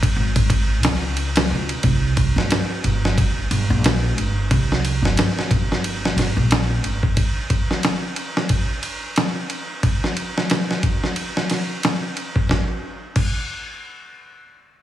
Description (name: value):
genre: trip hop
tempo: 90 BPM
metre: 4/4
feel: swing 58% on 16ths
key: unclear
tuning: A4 = 440 Hz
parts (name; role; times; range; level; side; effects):
- dusty soul sampler-style drum kit; drums; 0.0-13.4 s; crash cymbal, kick drum, ride cymbal, snare drum; -20 LUFS; equal; none
- upright bass; bass; 0.2-7.1 s; G1 to Db2; -20 LUFS; equal; none
room: light reverb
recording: heavily compressed radio sound, multiband compression, small room reverb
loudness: -18 LUFS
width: side -12 dB against mid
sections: 0.0-1.8 A section; 1.8-12.5 B section; 12.5-14.8 C section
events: none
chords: none